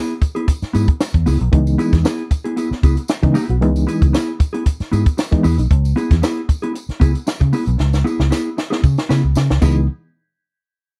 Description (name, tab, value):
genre	funk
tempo	115 BPM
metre	4/4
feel	straight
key	C# minor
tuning	A4 = 437 Hz
part	mellow electric guitar	accompaniment	0.0-9.8 s	B3 to G#4	-24 LUFS	equal	none
part	compact cocktail drum kit	drums	0.1-9.7 s	crash cymbal, hi-hat, kick drum, snare drum	-19 LUFS	equal	none
part	tambourine	percussion	0.2-9.9 s	none	-40 LUFS	equal	none
part	vintage muted fingered electric bass	bass	0.6-9.9 s	B1 to C#3	-18 LUFS	equal	transformer saturation
part	reed electric piano	stabs	1.5-5.7, 9.6-9.9 s	E3 to F#4	-21 LUFS	equal	fast tremolo
room	little or no reverb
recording	dry, close 1970s-style studio recording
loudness	-17 LUFS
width	mono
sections	0.0-9.9 A section; 9.9-11.0 B section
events	break 0.0-1.5; drum fill 7.8-9.9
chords	0.0 C#m7; 9.9 N.C.